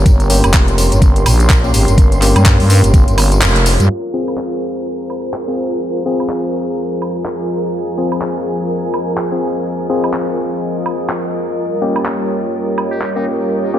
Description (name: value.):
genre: bass house.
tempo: 125 BPM.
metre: 4/4.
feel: swing 58% on 16ths.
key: F minor.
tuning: A4 = 440 Hz.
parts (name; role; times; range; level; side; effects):
dark analog pad; sustained chords; 0.0-13.8 s; F3 to C6; -22 LUFS; right 1 dB; chorus, sidechain pumping.
percussive organ stab; stabs; 0.0-13.8 s; Bb3 to Ab4; -20 LUFS; left 3 dB; chorus, sidechain pumping, digital delay.
growling FM bass; bass; 0.0-3.9 s; F1 to G2; -12 LUFS; equal; sidechain pumping.
granular cloud pad; texture; 0.0-13.8 s; F4 to Ab5; -23 LUFS; right 2 dB; built-in reverb, sidechain pumping.
electronic kick drum; drums; 0.1-3.0 s; none; -10 LUFS; equal; none.
garage drum kit; drums; 0.1-13.1 s; handclaps, hi-hat, tambourine, woodblock; -20 LUFS; right 1 dB; none.
trumpet with metal mute; melody; 12.9-13.2 s; Eb4 to G4; -34 LUFS; equal; digital delay.
room: light reverb.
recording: low-pass filter.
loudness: -12 LUFS.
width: side -11 dB against mid.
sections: 0.0-3.9 A section; 3.9-13.8 B section.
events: kick drops out 3.4-3.9; band accent 3.4; filter sweep on synth stab 3.9-13.8; filter sweep 3.9-13.8.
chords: 0.0 Gdim; 3.9 Fm; 11.6 Gdim.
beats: | 0.06 0.54 1.02 1.50 | 1.98 2.46 2.94 3.42 | 3.90 4.38 4.86 5.34 | 5.82 6.30 6.78 7.26 | 7.74 8.22 8.70 9.18 | 9.66 10.14 10.62 11.10 | 11.58 12.06 12.54 13.02 | 13.50.